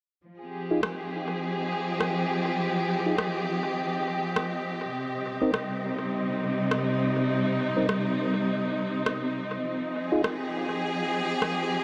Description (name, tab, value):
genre	ambient dub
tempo	102 BPM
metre	4/4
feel	swing 58% on 16ths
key	F minor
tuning	A4 = 440 Hz
part	rich studio string section	sustained chords	0.2-11.8 s	C3 to Ab4	-30 LUFS	equal	low-pass filter
part	wind-like tuned noise texture	texture	1.0-11.8 s	Eb5	-40 LUFS	equal	built-in reverb
part	tonewheel organ	stabs	0.7-10.2 s	C4 to Bb4	-34 LUFS	equal	slow rotary speaker, low-pass filter, dub echo
part	electronic rim click	drums	0.8-11.6 s	none	-36 LUFS	equal	studio reverb, dub echo
room	moderate huge ambient reverb, RT60 4.2 s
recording	none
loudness	-28 LUFS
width	mono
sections	0.2-11.8 A section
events	none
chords	0.2 Fm7; 5.0 Cm; 9.7 Fm7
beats	| 0.24 0.83 1.42 2.01 | 2.60 3.19 3.77 4.36 | 4.95 5.54 6.13 6.71 | 7.30 7.89 8.48 9.07 | 9.66 10.24 10.83 11.42